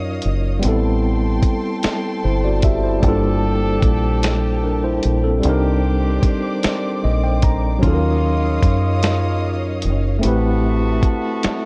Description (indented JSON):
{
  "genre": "slow six-eight R&B",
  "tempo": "50 BPM (dotted quarters)",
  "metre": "6/8",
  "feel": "straight",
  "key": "unclear",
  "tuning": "A4 = 440 Hz",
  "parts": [
    { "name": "tine electric piano", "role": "accompaniment", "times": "0.0-11.7 s", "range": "Gb3 to Bb5", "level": "-23 LUFS", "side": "equal", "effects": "none" },
    { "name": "warm studio string section", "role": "sustained chords", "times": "0.0-11.7 s", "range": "G4 to Eb6", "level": "-32 LUFS", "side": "equal", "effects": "none" },
    { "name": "deep dub fingered electric bass", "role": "bass", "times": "0.0-11.5 s", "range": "Gb1 to Gb2", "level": "-22 LUFS", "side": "equal", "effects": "none" },
    { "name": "dusty soul sampler-style drum kit", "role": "drums", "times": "0.2-11.6 s", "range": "hi-hat, kick drum, snare drum", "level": "-21 LUFS", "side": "equal", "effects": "none" },
    { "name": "clear horn section", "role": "stabs", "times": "3.0-11.7 s", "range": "C3 to A4", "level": "-30 LUFS", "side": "equal", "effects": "none" }
  ],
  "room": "digital ambience",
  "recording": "worn, warbling old tape, cassette tape, warbly pitch drift",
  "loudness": "-18 LUFS",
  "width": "mono",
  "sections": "0.0-11.7 A section",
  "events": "tine electric piano fill 6.6-7.8",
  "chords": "0.0 Ebm9; 0.6 Am9; 3.0 Gm9; 5.4 Cm9; 7.8 Ebm9; 10.2 Am9",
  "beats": "| 0.63 1.83 | 3.03 4.23 | 5.43 6.63 | 7.83 9.03 | 10.23 11.43"
}